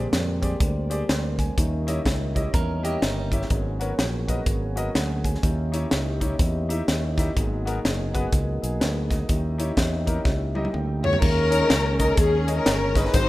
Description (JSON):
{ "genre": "uptempo gospel", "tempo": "124 BPM", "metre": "4/4", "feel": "swing 62% on 8ths", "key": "unclear", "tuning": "A4 = 442 Hz", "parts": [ { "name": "clear grand piano", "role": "accompaniment", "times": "0.0-13.3 s", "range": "G#2 to B#5", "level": "-32 LUFS", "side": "left 2 dB", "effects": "none" }, { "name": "dark French horn section", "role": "sustained chords", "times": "0.0-11.2 s", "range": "F#4 to E5", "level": "-35 LUFS", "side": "left 2 dB", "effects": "none" }, { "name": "mellow tonewheel organ", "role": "sustained chords", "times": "0.0-13.3 s", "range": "D3 to G#4", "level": "-33 LUFS", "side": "right 1 dB", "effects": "slow rotary speaker" }, { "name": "fingered electric bass", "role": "bass", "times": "0.0-13.3 s", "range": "F#1 to E#2", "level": "-26 LUFS", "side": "equal", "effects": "none" }, { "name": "crisp fusion drum kit", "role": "drums", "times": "0.1-13.3 s", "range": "crash cymbal, hi-hat, kick drum, snare drum, toms", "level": "-24 LUFS", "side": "equal", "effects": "none" }, { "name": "clean electric guitar", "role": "second line", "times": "2.5-3.5 s", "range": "G3 to A#4", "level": "-33 LUFS", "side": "right 4 dB", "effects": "none" }, { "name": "warm symphonic string section", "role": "melody", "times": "11.0-13.3 s", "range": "C#4 to C#5", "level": "-22 LUFS", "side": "left 2 dB", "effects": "none" } ], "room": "light reverb, small room ambience", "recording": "rough home demo mix", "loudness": "-21 LUFS", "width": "side -17 dB against mid", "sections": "0.0-11.2 A section; 11.2-13.3 B section", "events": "drum fill 10.3-11.2", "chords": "0.0 A#13; 1.6 D#7b9; 3.5 G#m11; 5.4 D#7b9; 7.4 G#m9; 9.3 D#7b9; 11.2 D#7sus4", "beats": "0.13 0.61 1.10 | 1.58 2.06 2.54 3.03 | 3.51 3.99 4.47 4.95 | 5.44 5.92 6.40 6.88 | 7.37 7.85 8.33 8.81 | 9.29 9.78 10.26 10.74 | 11.22 11.70 12.18 12.66 | 13.14" }